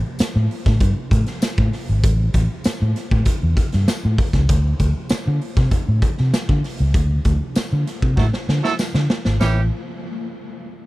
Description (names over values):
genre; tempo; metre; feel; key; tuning
funk; 98 BPM; 4/4; straight; A mixolydian; A4 = 437 Hz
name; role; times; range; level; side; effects
vintage muted fingered electric bass; bass; 0.2-9.7 s; G#1 to D3; -18 LUFS; equal; none
raw garage drum kit; drums; 0.2-9.5 s; hi-hat, kick drum, snare drum; -20 LUFS; equal; none
tambourine; percussion; 0.2-9.7 s; none; -35 LUFS; left 7 dB; none
clear horn section; second line; 8.2-9.6 s; E3 to A4; -22 LUFS; right 6 dB; none
room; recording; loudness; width
little or no reverb; none; -16 LUFS; side -19 dB against mid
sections
0.0-9.4 A section; 9.4-10.9 B section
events
band accent 6.9-9.4; drum fill 8.2-9.4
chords
none